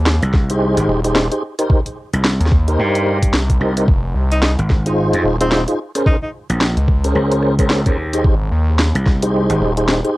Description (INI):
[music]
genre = glitch hop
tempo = 110 BPM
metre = 4/4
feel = swing 60% on 16ths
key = F minor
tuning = A4 = 441 Hz
[part]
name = gritty driven synth bass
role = bass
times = 0.0-10.0 s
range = Eb1 to Eb2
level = -17 LUFS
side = equal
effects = tube saturation
[part]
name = drum and bass drum kit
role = drums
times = 0.1-10.1 s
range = hi-hat, rim click, snare drum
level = -19 LUFS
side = equal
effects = overdrive, cassette tape
[part]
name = gritty slap bass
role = bass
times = 0.2-9.6 s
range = Ab1 to G2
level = -18 LUFS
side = equal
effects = overdrive, tube saturation
[part]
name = electronic kick drum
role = drums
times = 0.3-9.2 s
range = none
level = -15 LUFS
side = equal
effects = cassette tape
[part]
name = mellow tonewheel organ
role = stabs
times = 0.5-10.2 s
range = Db4 to C5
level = -19 LUFS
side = equal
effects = chorus vibrato, fast rotary speaker, vintage 12-bit sampler grit, sidechain pumping, cassette tape, analog delay
[part]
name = breathy tenor saxophone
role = melody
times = 4.3-6.3 s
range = C4 to Eb4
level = -23 LUFS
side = equal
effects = cassette tape, analog delay
[sound]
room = light reverb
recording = home recording on cassette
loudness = -14 LUFS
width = side -18 dB against mid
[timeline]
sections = 0.0-10.2 A section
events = none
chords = 0.0 Abmaj7; 1.7 Cm7; 3.9 Fm7; 6.1 Bbm9; 8.2 Abmaj7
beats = 0.06 0.61 1.15 | 1.70 2.24 2.79 3.33 | 3.88 4.43 4.97 5.52 | 6.06 6.61 7.15 7.70 | 8.24 8.79 9.34 9.88